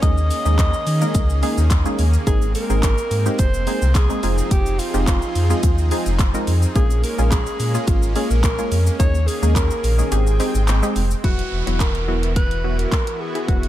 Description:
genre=dance-pop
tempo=107 BPM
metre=4/4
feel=straight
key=unclear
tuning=A4 = 439 Hz
part: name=breathy alto saxophone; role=melody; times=0.0-13.7 s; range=F4 to Eb5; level=-26 LUFS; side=equal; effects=digital delay
part: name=wavetable chord stab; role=accompaniment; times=0.0-13.7 s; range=F#3 to Bb4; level=-26 LUFS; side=equal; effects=sidechain pumping
part: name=supersaw pad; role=sustained chords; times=0.0-13.7 s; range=Eb3 to G5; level=-28 LUFS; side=right 1 dB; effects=sidechain pumping
part: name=sub bass with octave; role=bass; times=0.0-13.7 s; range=E1 to Eb3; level=-19 LUFS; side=equal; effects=sidechain pumping
part: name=pop drum kit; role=drums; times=0.0-13.7 s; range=handclaps, hi-hat, kick drum, shaker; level=-21 LUFS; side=equal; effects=none
part: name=tube shaker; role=percussion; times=2.3-11.2 s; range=none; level=-42 LUFS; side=right 16 dB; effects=none
part: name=downlifter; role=sound effects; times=11.2-13.7 s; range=none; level=-34 LUFS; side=right 4 dB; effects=none
room=digital ambience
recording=dark, warm production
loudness=-16 LUFS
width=side -13 dB against mid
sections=0.0-11.2 A section; 11.2-13.7 B section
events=kick muted 10.1-11.2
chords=0.0 Eb7sus4; 2.3 Fm7; 6.8 Bbm7; 9.0 Eb7sus4; 10.1 Abmaj7; 11.2 Esus2

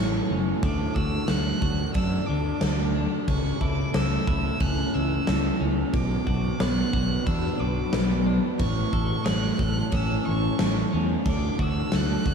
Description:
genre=post-rock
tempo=90 BPM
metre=4/4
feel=straight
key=unclear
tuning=A4 = 440 Hz
part: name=dark violin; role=melody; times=0.0-12.3 s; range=C#6 to F#6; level=-34 LUFS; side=right 3 dB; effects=analog delay
part: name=ethereal airy pad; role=sustained chords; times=0.0-12.3 s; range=C#4 to B5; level=-34 LUFS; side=right 1 dB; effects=ensemble chorus, built-in reverb, tremolo
part: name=twelve-string electric guitar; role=arpeggios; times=0.0-12.3 s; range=A2 to A4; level=-29 LUFS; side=left 2 dB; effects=analog delay
part: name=fuzz fingered electric bass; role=bass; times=0.0-12.3 s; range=F#1 to F#2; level=-27 LUFS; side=equal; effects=overdrive
part: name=huge arena drum kit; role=drums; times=0.6-12.3 s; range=crash cymbal, kick drum, snare drum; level=-27 LUFS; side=equal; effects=none
room=moderate plate reverb, RT60 1.4 s, small room ambience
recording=dreamy mix soaked in reverb, studio reverb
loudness=-22 LUFS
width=side -6 dB against mid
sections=0.0-12.3 A section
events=none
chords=0.0 A; 0.6 D; 3.3 A/C#; 5.9 Bm; 8.6 A; 11.3 D

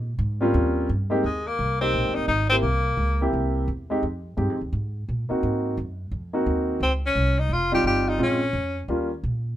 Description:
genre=jazz, small-group swing and bop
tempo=173 BPM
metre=4/4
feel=swing 62% on 8ths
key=Ab major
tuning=A4 = 440 Hz
part: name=upright bass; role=bass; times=0.0-9.6 s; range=F1 to Bb2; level=-26 LUFS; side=equal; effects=none
part: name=warm concert grand piano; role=accompaniment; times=0.4-9.1 s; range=G3 to G4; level=-24 LUFS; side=equal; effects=none
part: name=clear tenor saxophone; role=melody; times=1.3-3.3, 6.8-8.9 s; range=Ab3 to G4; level=-24 LUFS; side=left 2 dB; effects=none
room=light reverb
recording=minimal, uncompressed stereo recording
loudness=-22 LUFS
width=side -12 dB against mid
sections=0.0-1.2 A section; 1.2-9.6 B section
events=none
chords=0.0 Bbm7; 0.5 Eb13; 1.2 Abmaj9; 2.6 C7; 4.0 Fm7; 5.4 Ab7; 6.8 Dbmaj9#11; 8.2 Bbm7; 8.9 Eb7

